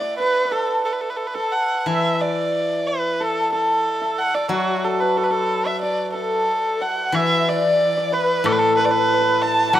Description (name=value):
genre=chinese traditional, Chinese chamber ensemble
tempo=92 BPM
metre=2/4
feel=rubato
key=D gong mode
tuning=A4 = 444 Hz
part: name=warm erhu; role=melody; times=0.0-9.8 s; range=F#4 to A5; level=-21 LUFS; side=right 1 dB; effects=none
part: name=hammered dulcimer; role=second line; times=0.0-9.8 s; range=F#4 to A5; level=-22 LUFS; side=right 2 dB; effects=none
part: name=steel-string zither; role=accompaniment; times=1.9-9.8 s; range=A2 to F#3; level=-25 LUFS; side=left 3 dB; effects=none
part: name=breathy bright low xiao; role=second line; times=6.2-9.8 s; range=A4 to A5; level=-24 LUFS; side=left 5 dB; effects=none
part: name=woodblock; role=percussion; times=7.1-9.8 s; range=none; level=-27 LUFS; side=right 1 dB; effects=none
room=light reverb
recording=close, detailed microphones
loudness=-18 LUFS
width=side -12 dB against mid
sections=0.0-7.1 A section; 7.1-9.8 B section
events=none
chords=none